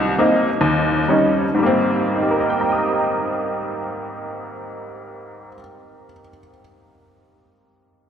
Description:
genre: solo jazz.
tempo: 111-146 BPM.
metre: 4/4.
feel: swing 65% on 8ths, rubato.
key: Ab major.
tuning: A4 = 440 Hz.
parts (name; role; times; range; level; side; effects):
honky-tonk upright piano; solo; 0.0-6.6 s; C2 to Eb6; -18 LUFS; equal; none.
room: wet cathedral reverb, RT60 5.2 s.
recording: recorded in a church or concert hall.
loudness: -16 LUFS.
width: side -8 dB against mid.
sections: 0.0-1.6 A section; 1.6-5.8 B section.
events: slowing down 0.0-1.6.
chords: 0.0 Cm7; 0.6 Eb7; 1.6 Abmaj9.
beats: 0.17 0.60 1.08 | 1.60 2.13 2.66 3.18 | 3.70 4.22 4.74 5.27.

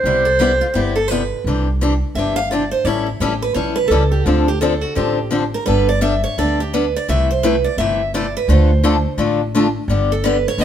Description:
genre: acoustic string swing (jazz manouche).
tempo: 170 BPM.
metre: 4/4.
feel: swing 62% on 8ths.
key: C major.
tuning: A4 = 440 Hz.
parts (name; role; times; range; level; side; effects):
warm clarinet; melody; 0.0-1.1 s; C5; -16 LUFS; right 1 dB; none.
upright bass; bass; 0.0-10.6 s; G1 to D2; -19 LUFS; equal; none.
picked steel-string acoustic guitar; accompaniment; 0.1-10.6 s; C3 to A4; -19 LUFS; left 3 dB; none.
picked steel-string acoustic guitar; second line; 0.3-10.6 s; E4 to F5; -20 LUFS; right 3 dB; none.
room: moderate studio reverb, RT60 1.0 s.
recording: band playing live in one room.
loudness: -15 LUFS.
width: side -9 dB against mid.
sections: 0.0-1.4 A section; 1.4-10.6 B section.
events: steel-string acoustic guitar solo 1.4-10.6.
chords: 0.0 Cmaj7; 1.4 Cadd9; 2.9 A7; 4.3 Dm7; 5.7 Gadd9; 7.1 C6; 8.5 Dm; 9.9 G.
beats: | 0.04 0.39 0.74 1.10 | 1.45 1.80 2.15 2.50 | 2.85 3.21 3.56 3.91 | 4.26 4.62 4.97 5.32 | 5.67 6.02 6.37 6.73 | 7.08 7.43 7.78 8.13 | 8.49 8.84 9.19 9.54 | 9.89 10.24 10.60.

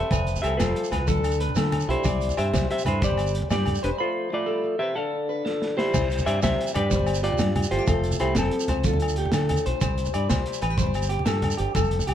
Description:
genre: highlife guitar band.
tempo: 124 BPM (dotted quarters).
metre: 12/8.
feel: straight.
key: C major.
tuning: A4 = 441 Hz.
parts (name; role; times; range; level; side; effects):
semi-hollow electric guitar; melody; 0.0-9.0 s; C4 to F5; -28 LUFS; equal; none.
trombone with cup mute; second line; 0.0-9.0 s; F3 to D4; -35 LUFS; left 4 dB; none.
nylon-string guitar; accompaniment; 0.0-12.1 s; A2 to C5; -35 LUFS; left 2 dB; none.
electric guitar at the edge of break-up; arpeggios; 0.0-12.1 s; G4 to B5; -29 LUFS; left 1 dB; spring reverb, slapback echo.
fingered electric bass; bass; 0.1-12.1 s; E1 to D3; -27 LUFS; equal; none.
crunchy breakbeat drum kit; drums; 0.1-12.1 s; crash cymbal, hi-hat, kick drum, snare drum; -30 LUFS; equal; none.
agogo bells; percussion; 0.1-12.1 s; none; -35 LUFS; left 5 dB; none.
congas; percussion; 0.1-12.1 s; none; -30 LUFS; equal; none.
shekere; percussion; 0.1-12.1 s; none; -33 LUFS; right 7 dB; none.
room: light reverb.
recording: none.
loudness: -22 LUFS.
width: side -10 dB against mid.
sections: 0.0-5.9 A section; 5.9-12.1 A section.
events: break 4.0-5.9; drum fill 5.5-5.9.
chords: 0.1 F; 1.1 Dm; 2.1 C; 3.0 Gsus4; 4.0 F; 5.0 Dm; 5.9 C; 6.9 Gsus4; 7.9 F; 8.8 Dm; 9.8 C; 10.8 Gsus4.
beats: | 0.11 0.59 1.08 1.57 | 2.05 2.54 3.03 3.51 | 4.00 4.48 4.97 5.45 | 5.94 6.42 6.91 7.39 | 7.88 8.36 8.85 9.33 | 9.81 10.30 10.78 11.27 | 11.75.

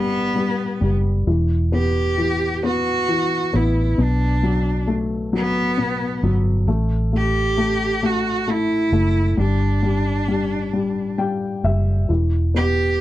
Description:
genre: six-eight pop ballad.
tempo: 44 BPM (dotted quarters).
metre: 6/8.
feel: straight.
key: E minor.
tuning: A4 = 439 Hz.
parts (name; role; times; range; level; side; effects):
clear cello; melody; 0.0-13.0 s; B3 to G4; -22 LUFS; right 2 dB; none.
dark upright piano; accompaniment; 0.0-13.0 s; B2 to G5; -23 LUFS; left 3 dB; none.
vintage muted fingered electric bass; bass; 0.0-13.0 s; E1 to B1; -20 LUFS; right 1 dB; none.
room: little or no reverb.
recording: dry, close 1970s-style studio recording.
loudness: -18 LUFS.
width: side -14 dB against mid.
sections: 0.0-13.0 A section.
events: upright piano fill 10.7-12.1.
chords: 0.0 G; 1.3 Em; 4.0 Bm7; 6.7 A5; 9.4 G5; 12.1 Em.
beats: | 1.27 2.63 | 3.99 5.33 | 6.68 8.03 | 9.38 10.73 | 12.09.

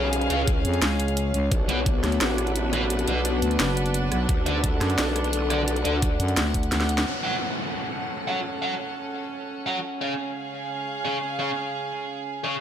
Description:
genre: dark technical drum and bass.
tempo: 173 BPM.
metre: 4/4.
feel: straight.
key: F# harmonic minor.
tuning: A4 = 441 Hz.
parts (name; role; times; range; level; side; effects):
dark analog pad; sustained chords; 0.0-12.6 s; B3 to G#5; -31 LUFS; left 1 dB; chorus, sidechain pumping.
sludgy distorted guitar; stabs; 0.0-12.5 s; B3 to F#5; -30 LUFS; left 1 dB; overdrive, ping-pong delay.
growl bass; bass; 0.0-6.2 s; A1 to D2; -27 LUFS; equal; chorus, overdrive, sidechain pumping.
dark symphonic string section; texture; 0.0-12.6 s; C#4 to F#5; -30 LUFS; right 2 dB; sidechain pumping.
drum and bass drum kit; drums; 0.1-7.0 s; hi-hat, rim click, snare drum; -27 LUFS; equal; overdrive.
electronic kick drum; drums; 0.5-1.9, 4.3-6.6 s; none; -24 LUFS; equal; overdrive.
growling FM bass; bass; 0.6-7.1 s; F#1 to F#2; -24 LUFS; equal; none.
downlifter; sound effects; 7.1-9.8 s; none; -32 LUFS; equal; none.
room: light reverb.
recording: none.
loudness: -23 LUFS.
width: side -9 dB against mid.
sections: 0.0-7.1 A section; 7.1-12.6 B section.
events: drum fill 6.7-7.1; band accent 7.0.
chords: 0.0 C#; 1.5 Bm; 4.3 D6; 7.1 F#m; 9.8 C#.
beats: | 0.13 0.47 0.82 1.17 | 1.52 1.86 2.21 2.56 | 2.90 3.25 3.60 3.94 | 4.29 4.64 4.98 5.33 | 5.68 6.02 6.37 6.72 | 7.07 7.41 7.76 8.11 | 8.45 8.80 9.15 9.49 | 9.84 10.19 10.53 10.88 | 11.23 11.57 11.92 12.27.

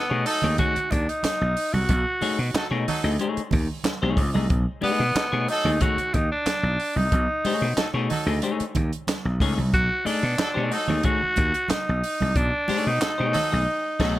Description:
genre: funk.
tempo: 92 BPM.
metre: 4/4.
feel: straight.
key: B mixolydian.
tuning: A4 = 439 Hz.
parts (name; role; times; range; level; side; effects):
raspy tenor saxophone; melody; 0.0-14.2 s; B3 to F#4; -25 LUFS; equal; none.
warm horn section; second line; 0.0-14.2 s; F#3 to A4; -30 LUFS; right 1 dB; plate reverb.
semi-hollow electric guitar; accompaniment; 0.1-14.2 s; A3 to D#5; -29 LUFS; left 4 dB; spring reverb, plate reverb.
gritty slap bass; bass; 0.1-14.2 s; B1 to B2; -25 LUFS; equal; overdrive.
compact cocktail drum kit; drums; 0.3-14.2 s; crash cymbal, handclaps, hi-hat, kick drum, snare drum; -28 LUFS; equal; none.
congas; percussion; 0.4-13.5 s; none; -32 LUFS; right 5 dB; none.
room: light reverb.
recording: none.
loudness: -21 LUFS.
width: side -15 dB against mid.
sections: 0.0-14.2 A section.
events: band accent 13.7-14.2.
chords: 0.0 B13.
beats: 0.58 1.24 | 1.89 2.54 3.20 3.85 | 4.50 5.16 5.81 6.46 | 7.12 7.77 8.43 9.08 | 9.73 10.39 11.04 11.70 | 12.36 13.01 13.67.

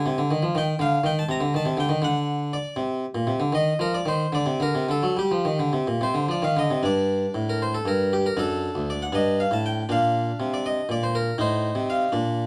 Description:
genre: classical, baroque-style suite movement for harpsichord.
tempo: 70-83 BPM (dotted quarters).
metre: 6/8.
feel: rubato.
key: G minor.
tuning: A4 = 436 Hz.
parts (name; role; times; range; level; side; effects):
harpsichord; solo; 0.0-12.5 s; D2 to Bb5; -24 LUFS; equal; none.
room: moderate studio reverb, RT60 0.5 s.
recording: dark, warm production.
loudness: -24 LUFS.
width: mono.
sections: 0.0-6.8 A section; 6.8-12.5 B section.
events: none.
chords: 0.0 Ab/C; 0.6 F13; 1.3 Cm; 2.0 D7; 3.5 Cm11/Eb; 4.3 D7; 5.2 G5; 8.4 D/F#; 9.1 G5; 9.9 Bb; 11.4 Adim.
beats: | 0.56 1.29 | 2.02 2.77 | 3.53 4.32 | 5.16 6.00 | 6.83 7.60 | 8.36 9.13 | 9.89 10.64 | 11.38 12.13.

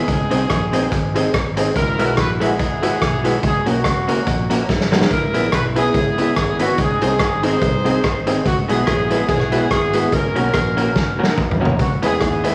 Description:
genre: ska.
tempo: 143 BPM.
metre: 4/4.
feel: swing 56% on 8ths.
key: C# dorian.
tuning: A4 = 440 Hz.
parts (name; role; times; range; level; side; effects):
warm horn section; melody; 0.0-12.5 s; A#3 to B#4; -24 LUFS; equal; none.
fingered electric bass; bass; 0.1-12.5 s; G#1 to E2; -26 LUFS; equal; none.
raw garage drum kit; drums; 0.1-12.5 s; hi-hat, kick drum, rim click, snare drum, toms; -22 LUFS; equal; none.
electric guitar through a small old amp; accompaniment; 0.3-12.5 s; G#3 to B#4; -24 LUFS; equal; none.
warm upright piano; stabs; 0.3-12.5 s; G#3 to B4; -29 LUFS; equal; none.
tambourine; percussion; 12.0-12.5 s; none; barely audible; none; none.
room: moderate large studio reverb, RT60 1.4 s.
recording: vinyl crackle.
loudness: -18 LUFS.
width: mono.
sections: 0.0-12.5 A section.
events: drum fill 4.7-5.1, 11.0-11.8.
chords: 0.1 G#; 1.8 Eadd9; 3.4 F#; 5.1 C#m7; 6.8 G#; 8.5 Eadd9; 10.1 F#; 11.8 C#m7.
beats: | 0.08 0.50 0.92 1.34 | 1.75 2.17 2.59 3.01 | 3.43 3.85 4.27 4.69 | 5.11 5.53 5.95 6.37 | 6.78 7.20 7.62 8.04 | 8.46 8.87 9.29 9.71 | 10.13 10.54 10.96 11.38 | 11.79 12.21.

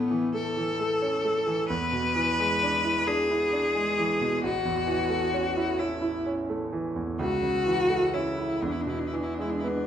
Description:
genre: classical, romantic duo for cello and grand piano.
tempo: 38-45 BPM (dotted quarters).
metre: 6/8.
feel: rubato.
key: A major.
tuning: A4 = 441 Hz.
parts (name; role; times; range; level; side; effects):
rich cello; melody; 0.0-9.9 s; B3 to B4; -26 LUFS; left 2 dB; none.
bright concert grand piano; accompaniment; 0.0-9.9 s; A1 to E4; -29 LUFS; right 2 dB; none.
room: wet recital hall reverb, RT60 1.3 s.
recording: minimal, uncompressed stereo recording.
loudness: -24 LUFS.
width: side -9 dB against mid.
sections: 0.0-9.9 A section.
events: none.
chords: 0.0 A; 1.7 E7; 4.4 A; 7.2 A/C#; 8.6 E.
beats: 0.35 | 1.70 3.08 | 4.43 5.80 | 7.21 8.64.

